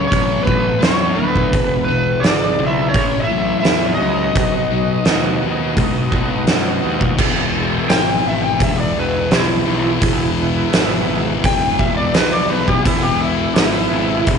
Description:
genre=blues rock power trio and southern rock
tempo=85 BPM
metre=4/4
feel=straight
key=E major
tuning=A4 = 445 Hz
part: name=overdriven slide guitar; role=melody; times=0.0-14.4 s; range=E4 to G5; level=-20 LUFS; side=equal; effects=none
part: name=lightly driven lead guitar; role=second line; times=0.0-6.4 s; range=B3 to G#4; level=-26 LUFS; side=right 13 dB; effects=none
part: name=overdriven tonewheel organ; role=sustained chords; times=0.0-14.4 s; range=G#3 to E5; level=-28 LUFS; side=right 11 dB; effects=chorus vibrato, slow rotary speaker
part: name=thick fuzz guitar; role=riff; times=0.0-14.4 s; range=E2 to G#3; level=-21 LUFS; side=left 12 dB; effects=distortion
part: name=fuzz picked electric bass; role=bass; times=0.0-14.4 s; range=E1 to F#2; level=-22 LUFS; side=right 1 dB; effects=overdrive
part: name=oversized low-tuned drum kit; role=drums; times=0.1-14.4 s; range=crash cymbal, hi-hat, kick drum, snare drum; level=-18 LUFS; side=right 1 dB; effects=none
room=light reverb, studio reverb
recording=1960s-style stereo with parts hard left and right, nothing above 10.6 kHz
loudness=-14 LUFS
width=side -6 dB against mid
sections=0.0-7.2 A section; 7.2-14.4 B section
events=electric slide guitar solo 7.2-14.4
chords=0.0 A; 1.5 E; 2.9 A; 4.4 B; 7.2 E

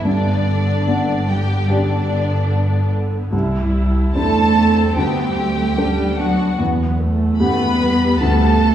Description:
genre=cinematic, emotional film score for orchestra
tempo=74 BPM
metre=4/4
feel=rubato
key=G major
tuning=A4 = 440 Hz
part: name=warm symphonic violin section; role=melody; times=0.0-8.7 s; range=D5 to B5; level=-24 LUFS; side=left 2 dB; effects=none
part: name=warm symphonic violin section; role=second line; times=0.0-8.7 s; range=D4 to B4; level=-24 LUFS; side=left 1 dB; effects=none
part: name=felt-muted upright piano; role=accompaniment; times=0.0-8.7 s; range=C2 to A4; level=-22 LUFS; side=equal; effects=none
part: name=warm studio viola section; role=accompaniment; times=0.0-8.7 s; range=D3 to E4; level=-24 LUFS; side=right 1 dB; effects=none
part: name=dark symphonic cello section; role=bass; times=0.0-8.7 s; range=D3 to B3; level=-21 LUFS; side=right 2 dB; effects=none
part: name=warm symphonic double bass section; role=bass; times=0.0-8.7 s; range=G1 to E2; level=-20 LUFS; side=equal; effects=none
room=wet recital hall reverb, RT60 1.5 s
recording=heard from further back in the room, small room ambience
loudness=-15 LUFS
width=side -10 dB against mid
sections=0.0-8.7 A section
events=none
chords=0.1 G; 3.3 Cadd9; 5.0 Dsus4; 6.6 Em; 8.2 G/D

